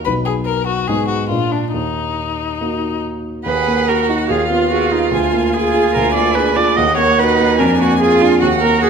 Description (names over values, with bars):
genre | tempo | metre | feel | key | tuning
quick classical-period movement for piano quartet | 145 BPM | 4/4 | straight | Eb minor | A4 = 440 Hz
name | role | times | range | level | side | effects
warm concert grand piano | accompaniment | 0.0-8.9 s | B1 to Ab4 | -17 LUFS | equal | none
warm violin | melody | 0.1-8.9 s | D4 to Ab5 | -22 LUFS | left 7 dB | none
rich cello | second line | 3.5-8.9 s | Bb3 to Ab4 | -20 LUFS | right 6 dB | none
rich viola | accompaniment | 3.5-8.9 s | Eb4 to Eb5 | -16 LUFS | right 4 dB | none
room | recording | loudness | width
moderate recital hall reverb, RT60 1.5 s | none | -13 LUFS | side -6 dB against mid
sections
0.0-3.5 A section; 3.5-8.9 A section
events
none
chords
0.1 B; 0.9 Abm; 1.3 Bb; 1.7 Ebm; 4.3 Fm7b5/Eb; 5.1 Bb7/D; 6.8 Ebm; 7.6 Bb7/F